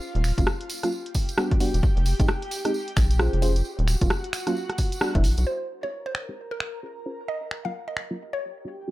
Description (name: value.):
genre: UK garage, two-step garage.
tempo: 132 BPM.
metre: 4/4.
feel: swing 61% on 16ths.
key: unclear.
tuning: A4 = 440 Hz.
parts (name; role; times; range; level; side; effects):
airy breathy pad; sustained chords; 0.0-8.9 s; F4 to Bb5; -38 LUFS; left 1 dB; chorus, sidechain pumping.
tambourine; percussion; 0.0-5.4 s; none; -38 LUFS; right 4 dB; none.
rubbery square bass; bass; 0.2-5.4 s; Eb1 to B1; -22 LUFS; equal; none.
punchy analog drum machine; drums; 0.2-8.1 s; finger snaps, hi-hat, rim click; -29 LUFS; equal; none.
deep mellow chord stab; stabs; 0.4-8.9 s; Gb3 to C5; -30 LUFS; right 1 dB; chorus, dub echo.
electronic kick drum; drums; 0.4-5.2 s; none; -23 LUFS; equal; none.
mallet-like synth pluck; melody; 5.5-8.5 s; Bb4 to F5; -32 LUFS; equal; chorus, phaser, dub echo.
room: little or no reverb.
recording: none.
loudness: -23 LUFS.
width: side -17 dB against mid.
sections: 0.0-5.5 A section; 5.5-8.9 B section.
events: band accent 5.0; filter sweep on synth stab 5.5-8.9; filter sweep on analog synth pad 5.5-8.9.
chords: 0.0 Ebm9; 0.9 Em9; 1.8 Fm9; 2.7 Bbm9; 3.6 Ebm9; 4.6 Em9; 5.5 Abmaj9; 6.4 Bbm9; 7.3 Gb6; 8.2 Gmaj7#11.